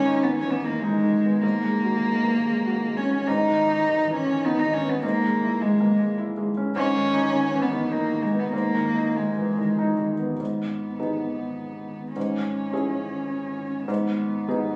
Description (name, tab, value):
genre	neoclassical piano and strings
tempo	95-106 BPM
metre	3/4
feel	rubato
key	G# minor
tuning	A4 = 440 Hz
part	warm cello	second line	0.0-14.8 s	G#3 to D#4	-26 LUFS	equal	none
part	felt-muted upright piano	accompaniment	0.0-14.8 s	G#2 to G#4	-29 LUFS	equal	none
part	punchy sub bass	bass	0.0-14.8 s	G#1	-41 LUFS	equal	none
room	light reverb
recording	recorded on a phone in the room, club reverb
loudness	-24 LUFS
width	mono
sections	0.0-10.4 A section; 10.4-14.8 B section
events	none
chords	0.0 G#m; 1.4 F#add9/G#; 3.3 G#5; 5.0 C#m/G# (rootless); 6.8 G#5; 10.4 G#m; 12.2 C#m/G#; 13.9 G#m